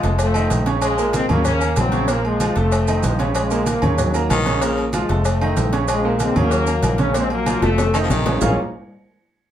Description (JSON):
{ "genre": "latin, salsa", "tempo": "190 BPM", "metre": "4/4", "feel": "straight", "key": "Bb minor", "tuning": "A4 = 440 Hz", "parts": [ { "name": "bright trombone section", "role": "melody", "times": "0.0-8.6 s", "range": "C3 to Db4", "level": "-22 LUFS", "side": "left 2 dB", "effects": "none" }, { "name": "clear concert grand piano", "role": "accompaniment", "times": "0.0-8.6 s", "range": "Bb2 to Bb5", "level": "-23 LUFS", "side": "right 4 dB", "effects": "none" }, { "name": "fingered electric bass", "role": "bass", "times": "0.0-8.6 s", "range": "F1 to Eb2", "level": "-22 LUFS", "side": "equal", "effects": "none" }, { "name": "congas", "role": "percussion", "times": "0.0-8.5 s", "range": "none", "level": "-26 LUFS", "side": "left 1 dB", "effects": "none" }, { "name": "cowbell and bongos", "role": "percussion", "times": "0.0-8.5 s", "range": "none", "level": "-27 LUFS", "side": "left 2 dB", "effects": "none" }, { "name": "maracas", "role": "percussion", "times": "0.0-8.5 s", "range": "none", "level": "-34 LUFS", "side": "right 6 dB", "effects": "none" }, { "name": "agogo bells and timbales", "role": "percussion", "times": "0.2-8.5 s", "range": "none", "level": "-27 LUFS", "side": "right 2 dB", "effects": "none" }, { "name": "growling baritone saxophone", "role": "second line", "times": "4.3-4.9, 7.9-8.6 s", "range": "Db3 to F3", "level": "-23 LUFS", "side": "left 3 dB", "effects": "none" } ], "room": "wet studio reverb, RT60 0.5 s", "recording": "heard from further back in the room", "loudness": "-16 LUFS", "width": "side -10 dB against mid", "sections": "0.0-8.4 A section; 8.4-9.5 B section", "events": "drum fill 7.6-8.4", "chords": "0.2 F7; 0.8 Bbm7; 2.1 Bb5; 2.7 F7; 3.4 Bbm7; 4.6 Bb5; 5.3 F7; 5.9 Bbm7; 7.2 Bb5; 7.8 F7; 8.4 Bbm7", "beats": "0.19 0.51 | 0.82 1.14 1.46 1.77 | 2.09 2.40 2.72 3.04 | 3.35 3.67 3.99 4.30 | 4.62 4.94 5.25 5.57 | 5.89 6.20 6.52 6.84 | 7.15 7.47 7.79 8.10 | 8.42" }